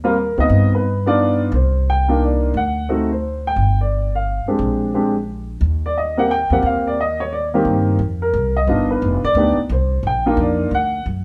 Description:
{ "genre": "jazz piano trio", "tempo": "176 BPM", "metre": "3/4", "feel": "swing 64% on 8ths", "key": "Eb major", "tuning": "A4 = 442 Hz", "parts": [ { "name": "warm upright piano", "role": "melody", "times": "0.0-11.0 s", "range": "Eb3 to G5", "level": "-20 LUFS", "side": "equal", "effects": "none" }, { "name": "upright bass", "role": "bass", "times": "0.0-11.2 s", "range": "F1 to G2", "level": "-22 LUFS", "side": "equal", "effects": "none" } ], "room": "moderate large studio reverb, RT60 1.1 s", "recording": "band playing live in one room", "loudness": "-18 LUFS", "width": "mono", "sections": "0.0-7.7 A section; 7.7-11.2 A section", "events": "none", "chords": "0.0 Eb69; 0.5 G7b13; 1.5 Cm11; 2.5 D7; 3.6 G5; 4.6 Bb13; 5.6 Eb69; 8.7 G7b13; 9.7 Cm11; 10.7 D" }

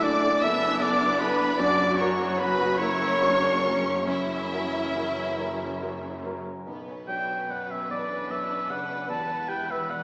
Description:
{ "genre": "cinematic", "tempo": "45-52 BPM (dotted quarters)", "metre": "6/8", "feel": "rubato", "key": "B minor from 6.7 s", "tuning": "A4 = 439 Hz", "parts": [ { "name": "warm studio violin section", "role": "melody", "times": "0.0-10.0 s", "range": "B4 to E6", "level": "-34 LUFS", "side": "equal", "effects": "none" }, { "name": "clear clarinet", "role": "second line", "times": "0.0-6.2 s", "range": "E4 to E5", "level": "-30 LUFS", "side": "equal", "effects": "none" }, { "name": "mellow hollow silver concert flute", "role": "second line", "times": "0.0-6.2 s", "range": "E5 to E6", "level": "-29 LUFS", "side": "equal", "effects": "none" }, { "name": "rich studio violin section", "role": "second line", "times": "0.0-10.0 s", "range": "G3 to E5", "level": "-31 LUFS", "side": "equal", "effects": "none" }, { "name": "dark grand piano", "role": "accompaniment", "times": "0.0-10.0 s", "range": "B1 to C#5", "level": "-32 LUFS", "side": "equal", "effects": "none" }, { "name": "warm studio viola section", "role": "accompaniment", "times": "0.0-10.0 s", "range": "F#3 to B4", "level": "-31 LUFS", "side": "equal", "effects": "none" }, { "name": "mellow French horn section", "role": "sustained chords", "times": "0.0-6.2 s", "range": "E3 to C#5", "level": "-31 LUFS", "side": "equal", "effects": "none" }, { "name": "clear studio double bass section", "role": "bass", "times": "0.0-10.0 s", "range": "E1 to B1", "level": "-38 LUFS", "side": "equal", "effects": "none" }, { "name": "warm studio cello section", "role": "bass", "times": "0.0-10.0 s", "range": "E2 to B2", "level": "-39 LUFS", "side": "equal", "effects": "none" }, { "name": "clear oboe", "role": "second line", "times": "7.1-10.0 s", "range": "D5 to A5", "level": "-29 LUFS", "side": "equal", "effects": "none" } ], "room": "wet scoring stage reverb, RT60 1.9 s", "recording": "heard from further back in the room, small speaker sound", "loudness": "-23 LUFS", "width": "side -29 dB against mid", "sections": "0.0-6.7 A section; 6.7-10.0 B section", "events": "none", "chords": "0.0 Dadd9/F#; 1.6 F#7; 6.7 Bmadd9; 9.1 Em" }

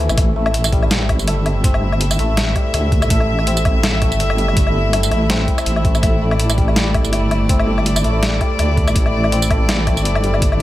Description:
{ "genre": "half-time drum and bass", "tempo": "164 BPM", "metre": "4/4", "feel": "swing 55% on 16ths, half-time", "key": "A minor", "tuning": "A4 = 440 Hz", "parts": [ { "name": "warm chamber string section", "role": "sustained chords", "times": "0.0-10.6 s", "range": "A2 to E5", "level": "-22 LUFS", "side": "equal", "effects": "sidechain pumping" }, { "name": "santur", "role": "arpeggios", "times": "0.0-10.6 s", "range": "E3 to A4", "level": "-25 LUFS", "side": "left 4 dB", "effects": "tape echo" }, { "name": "deep soft wobble bass", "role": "bass", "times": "0.0-10.6 s", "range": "G1 to D2", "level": "-18 LUFS", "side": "equal", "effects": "chorus, tube saturation" }, { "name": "boom bap sampler-style drum kit", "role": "drums", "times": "0.1-10.6 s", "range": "hi-hat, snare drum, tambourine, woodblock", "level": "-21 LUFS", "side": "left 1 dB", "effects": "none" }, { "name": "electronic kick drum", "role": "drums", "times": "0.2-10.5 s", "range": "none", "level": "-17 LUFS", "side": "equal", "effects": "none" } ], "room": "little or no reverb", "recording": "none", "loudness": "-14 LUFS", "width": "side -15 dB against mid", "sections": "0.2-10.6 A section", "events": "break 0.0; drop 0.2-10.6", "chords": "0.2 A5" }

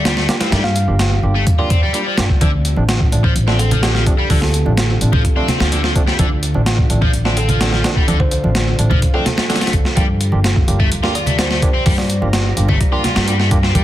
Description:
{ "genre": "breakbeat, breaks", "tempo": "127 BPM", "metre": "4/4", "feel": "straight", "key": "D minor", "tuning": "A4 = 438 Hz", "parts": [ { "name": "lush unison pad", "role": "sustained chords", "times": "0.0-13.8 s", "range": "D3 to Bb5", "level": "-28 LUFS", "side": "left 1 dB", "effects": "chorus, sidechain pumping" }, { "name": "biting overdriven guitar", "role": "riff", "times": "0.0-13.8 s", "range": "D3 to F4", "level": "-22 LUFS", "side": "left 2 dB", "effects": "dub echo" }, { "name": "upright bass", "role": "bass", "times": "0.0-13.8 s", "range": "G1 to G2", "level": "-17 LUFS", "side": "equal", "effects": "tube saturation" }, { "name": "barky tine electric piano", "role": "stabs", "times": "0.1-13.8 s", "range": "F3 to G4", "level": "-26 LUFS", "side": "right 3 dB", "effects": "dub echo" }, { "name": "breakbeat sampler-style drum kit", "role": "drums", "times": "0.1-13.8 s", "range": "hi-hat, kick drum, snare drum", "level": "-16 LUFS", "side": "equal", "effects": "none" }, { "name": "kalimba", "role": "melody", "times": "0.6-12.5 s", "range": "G4 to F5", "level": "-27 LUFS", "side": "right 1 dB", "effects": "old record sound, vintage 12-bit sampler grit, dub echo" }, { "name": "congas", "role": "percussion", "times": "2.4-13.8 s", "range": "none", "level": "-23 LUFS", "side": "right 1 dB", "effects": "none" } ], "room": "little or no reverb", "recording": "dense, heavily limited modern master, vinyl crackle", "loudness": "-13 LUFS", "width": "side -13 dB against mid", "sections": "0.0-13.8 A section", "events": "none", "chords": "0.0 Gm7; 2.4 Dm7; 10.0 Gm7" }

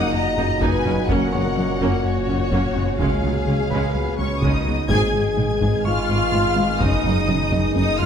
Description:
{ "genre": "cinematic, hybrid orchestral and electronic film score", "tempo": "126 BPM", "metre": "4/4", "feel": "straight", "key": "G# dorian", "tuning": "A4 = 440 Hz", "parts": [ { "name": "warm symphonic violin section", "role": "melody", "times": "0.0-8.1 s", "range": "C#5 to G#6", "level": "-28 LUFS", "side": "left 3 dB", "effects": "none" }, { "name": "warm symphonic violin section", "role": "second line", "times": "0.0-8.1 s", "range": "F#4 to G#5", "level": "-28 LUFS", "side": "left 3 dB", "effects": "none" }, { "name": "rich symphonic viola section", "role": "accompaniment", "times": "0.0-8.1 s", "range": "F#3 to G#4", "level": "-28 LUFS", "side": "right 1 dB", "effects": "none" }, { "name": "deep dark ambient pad", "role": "sustained chords", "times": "0.0-8.1 s", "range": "A#2 to D#5", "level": "-27 LUFS", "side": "left 1 dB", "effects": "chorus, built-in reverb" }, { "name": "warm French horn section", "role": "sustained chords", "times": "0.0-8.1 s", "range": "A#2 to G#4", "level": "-27 LUFS", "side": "left 1 dB", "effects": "none" }, { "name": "rubbery square bass", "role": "riff", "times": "0.0-8.1 s", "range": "C#2 to G#3", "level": "-26 LUFS", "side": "left 2 dB", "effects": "none" }, { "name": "dark detuned saw bass", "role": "bass", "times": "0.0-8.1 s", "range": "F#1 to C#2", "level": "-28 LUFS", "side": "equal", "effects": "none" }, { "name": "bright grand piano", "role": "texture", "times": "0.0-8.1 s", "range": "B4 to C#6", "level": "-36 LUFS", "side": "equal", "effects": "digital delay" }, { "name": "rich symphonic cello section", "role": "bass", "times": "0.4-8.1 s", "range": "C#2 to G#2", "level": "-28 LUFS", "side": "right 2 dB", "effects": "none" }, { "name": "warm symphonic double bass section", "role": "bass", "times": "0.4-8.1 s", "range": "F#1 to C#2", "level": "-28 LUFS", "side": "right 4 dB", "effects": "none" }, { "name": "taiko ensemble", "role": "drums", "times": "0.6-8.0 s", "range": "none", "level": "-28 LUFS", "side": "equal", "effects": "none" } ], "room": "wet scoring stage reverb, RT60 1.8 s", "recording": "none", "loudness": "-18 LUFS", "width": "side -8 dB against mid", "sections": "0.0-4.9 A section; 4.9-8.1 B section", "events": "band accent 4.9-5.4", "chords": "0.0 D#m/F#; 1.1 F#; 3.0 C#; 4.9 G#m; 6.8 D#m/F#" }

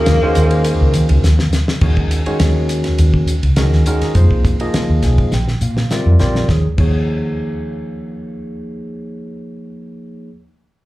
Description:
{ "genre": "electric jazz fusion", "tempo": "103 BPM", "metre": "4/4", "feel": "straight", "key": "Eb dorian", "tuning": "A4 = 438 Hz", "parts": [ { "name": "breathy tenor saxophone", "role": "melody", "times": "0.0-1.2 s", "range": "Bb3", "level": "-20 LUFS", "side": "left 1 dB", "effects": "slapback echo, tape echo" }, { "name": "barky tine electric piano", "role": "accompaniment", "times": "0.0-10.3 s", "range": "Eb3 to Ab5", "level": "-21 LUFS", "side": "equal", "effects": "wide subtle chorus, slapback echo" }, { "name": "woody fretless electric bass", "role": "bass", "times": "0.1-10.3 s", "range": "Bb1 to Eb3", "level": "-14 LUFS", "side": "equal", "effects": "none" }, { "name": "damped 70s drum kit", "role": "drums", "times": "0.1-7.0 s", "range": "crash cymbal, hi-hat, kick drum, ride cymbal, snare drum", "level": "-20 LUFS", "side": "equal", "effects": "none" } ], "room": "light reverb", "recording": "live gig heard through the venue's PA, club reverb", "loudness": "-12 LUFS", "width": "side -17 dB against mid", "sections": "0.0-1.8 A section; 1.8-6.5 B section; 6.5-8.8 C section", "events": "drum fill 1.2-1.8, 5.3-6.5; tine electric piano fill 4.7-6.5", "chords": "0.0 Ebm7; 4.2 Fm7; 5.3 Bbadd9; 6.5 Ebsus2" }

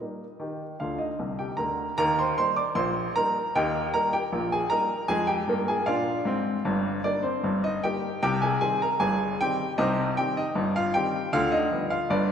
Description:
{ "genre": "ragtime piano", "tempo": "77 BPM", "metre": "2/4", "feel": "straight", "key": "Eb major", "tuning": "A4 = 440 Hz", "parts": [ { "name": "clear upright piano", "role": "solo", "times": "0.0-12.3 s", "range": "G1 to D6", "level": "-24 LUFS", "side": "equal", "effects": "none" } ], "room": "wet church reverb, RT60 2.6 s", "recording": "recorded in a church or concert hall", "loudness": "-24 LUFS", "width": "side -8 dB against mid", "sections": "0.0-2.0 A section; 2.0-12.3 B section", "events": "upright piano fill 0.8-2.0", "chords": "0.0 Eb; 5.1 Bb7/F; 6.7 Eb/G; 8.2 Cm; 11.3 G7/D" }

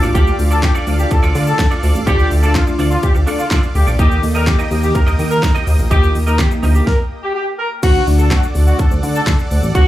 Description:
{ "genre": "dance-pop", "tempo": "125 BPM", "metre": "4/4", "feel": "straight", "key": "unclear", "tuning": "A4 = 440 Hz", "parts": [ { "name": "mellow tine electric piano", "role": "accompaniment", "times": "0.0-9.9 s", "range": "A3 to Bb4", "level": "-23 LUFS", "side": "left 2 dB", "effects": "lush chorus, sidechain pumping, plate reverb, slapback echo" }, { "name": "supersaw pad", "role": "sustained chords", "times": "0.0-9.9 s", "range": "Bb3 to Eb6", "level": "-27 LUFS", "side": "right 1 dB", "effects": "sidechain pumping, plate reverb" }, { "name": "semi-hollow electric guitar", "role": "riff", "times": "0.0-6.8 s", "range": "D4 to Eb5", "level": "-24 LUFS", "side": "right 5 dB", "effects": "ensemble chorus, slapback echo" }, { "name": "chorused synth bass", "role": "bass", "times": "0.0-9.9 s", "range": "A1 to Eb3", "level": "-15 LUFS", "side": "equal", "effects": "sidechain pumping" }, { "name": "pop drum kit", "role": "drums", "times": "0.0-9.9 s", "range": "crash cymbal, handclaps, hi-hat, kick drum, shaker, snare drum", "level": "-16 LUFS", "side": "equal", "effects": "none" }, { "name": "mellow horn section", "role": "melody", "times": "0.2-9.9 s", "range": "F4 to Bb4", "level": "-20 LUFS", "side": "left 1 dB", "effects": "sidechain pumping, plate reverb, slapback echo" } ], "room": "light reverb", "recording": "live gig heard through the venue's PA, club reverb", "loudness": "-12 LUFS", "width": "side -14 dB against mid", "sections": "0.0-7.8 A section; 7.8-9.9 A section", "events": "drop 0.0-7.8, 7.8-9.9; stop 6.9-7.8", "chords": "0.0 Dm; 4.0 Eb; 7.8 D" }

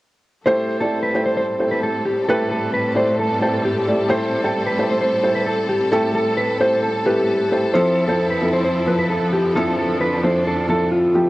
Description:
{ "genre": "hip hop", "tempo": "132 BPM", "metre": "4/4", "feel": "half-time", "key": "A minor", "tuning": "A4 = 440 Hz", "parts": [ { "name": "mellow electric guitar", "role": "melody", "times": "0.5-11.3 s", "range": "F4 to C5", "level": "-20 LUFS", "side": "equal", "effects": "cassette tape" }, { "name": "felt-muted upright piano", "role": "accompaniment", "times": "0.5-11.3 s", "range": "F3 to D5", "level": "-20 LUFS", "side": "equal", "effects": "cassette tape" }, { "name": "rich symphonic string section", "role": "sustained chords", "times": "0.5-11.3 s", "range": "F2 to A4", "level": "-24 LUFS", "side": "left 1 dB", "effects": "cassette tape" } ], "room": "moderate studio reverb, RT60 0.6 s", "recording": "home recording on cassette", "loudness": "-17 LUFS", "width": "side -18 dB against mid", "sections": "0.5-11.3 A section", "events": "none", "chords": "0.5 Am7; 7.7 Fmaj7" }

